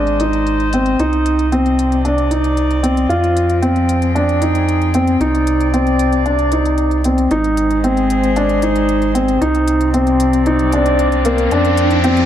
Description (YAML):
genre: piano and strings electronica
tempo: 114 BPM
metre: 4/4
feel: straight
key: C minor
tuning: A4 = 439 Hz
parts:
  - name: dark string quartet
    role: sustained chords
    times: 0.0-12.3 s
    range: C3 to G5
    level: -21 LUFS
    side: left 2 dB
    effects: low-pass filter
  - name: dark baby grand piano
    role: riff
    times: 0.0-12.3 s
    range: Bb3 to F4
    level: -15 LUFS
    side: equal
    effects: ping-pong delay
  - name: warm sub bass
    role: bass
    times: 0.0-12.3 s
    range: Ab1 to F2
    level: -18 LUFS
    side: equal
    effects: none
  - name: electronic hi-hat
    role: drums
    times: 0.1-12.3 s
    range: none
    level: -32 LUFS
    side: left 3 dB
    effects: low-pass filter on hats, low-pass filter on room
  - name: riser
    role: sound effects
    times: 10.3-12.3 s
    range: none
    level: -23 LUFS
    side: right 2 dB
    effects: none
room: moderate concert hall reverb, RT60 2.0 s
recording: dark, warm production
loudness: -13 LUFS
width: side -10 dB against mid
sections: 0.0-9.4 A section; 9.4-12.3 B section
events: fade-in on string quartet 0.0-9.4; filter sweep on grand piano 0.0-9.4; build-up 9.4-12.3; filter sweep on string quartet 9.4-12.3; riser 10.3-12.3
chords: 0.0 Ab; 1.0 Cmadd9; 3.1 Fmadd9; 5.2 Cmadd9; 7.3 Ab; 9.4 Cmadd9; 11.5 Fsus2